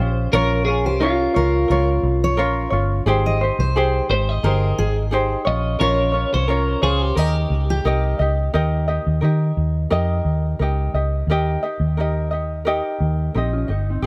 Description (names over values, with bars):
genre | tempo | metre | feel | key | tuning
acoustic pop | 88 BPM | 4/4 | swing 55% on 16ths | unclear | A4 = 440 Hz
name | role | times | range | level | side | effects
twelve-string electric guitar | melody | 0.0-8.2 s | F4 to Eb5 | -26 LUFS | equal | tape echo
ukulele | accompaniment | 0.0-14.1 s | Db4 to Eb5 | -25 LUFS | equal | none
vintage muted fingered electric bass | bass | 0.0-14.1 s | G1 to Eb3 | -22 LUFS | equal | none
fingerpicked steel-string acoustic guitar | arpeggios | 0.3-7.9 s | G4 to Eb5 | -30 LUFS | equal | none
mellow electric guitar | second line | 13.4-14.1 s | C4 to G4 | -30 LUFS | equal | subtle chorus
room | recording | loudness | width
light reverb | none | -20 LUFS | mono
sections
0.0-8.5 A section; 8.5-14.0 B section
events
none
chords
0.0 Bbm; 3.1 Abmaj7; 5.5 Bbm; 7.2 Eb